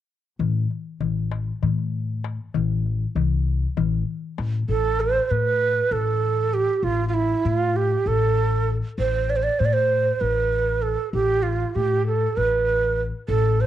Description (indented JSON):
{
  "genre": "Turkish makam ensemble",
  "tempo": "196 BPM (eighths)",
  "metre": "7/8",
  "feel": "straight",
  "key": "A makam ussak",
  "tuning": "A4 = 440 Hz",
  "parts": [
    { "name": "upright bass", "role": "bass", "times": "0.4-13.7 s", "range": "A1 to A2", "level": "-24 LUFS", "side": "left 2 dB", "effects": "none" },
    { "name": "darbuka", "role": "percussion", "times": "0.4-4.5 s", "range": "none", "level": "-27 LUFS", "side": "left 10 dB", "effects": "none" },
    { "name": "breathy bright ney", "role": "melody", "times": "4.7-13.7 s", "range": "E4 to D5", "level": "-21 LUFS", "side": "right 4 dB", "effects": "cassette tape" }
  ],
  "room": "moderate spring reverb, RT60 1.2 s, small room ambience",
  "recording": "home recording on cassette",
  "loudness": "-20 LUFS",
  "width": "side -11 dB against mid",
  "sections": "0.4-4.7 A section; 4.7-13.7 B section",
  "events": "none",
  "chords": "none",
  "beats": "| 0.39 0.70 1.00 1.31 1.62 1.93 2.23 | 2.54 2.85 3.16 3.46 3.77 4.08 4.38 | 4.69 5.00 5.30 5.61 5.92 6.22 6.53 | 6.84 7.15 7.45 7.76 8.07 8.37 8.68 | 8.99 9.29 9.60 9.91 10.21 10.52 10.83 | 11.14 11.44 11.75 12.06 12.36 12.67 12.98 | 13.28 13.59"
}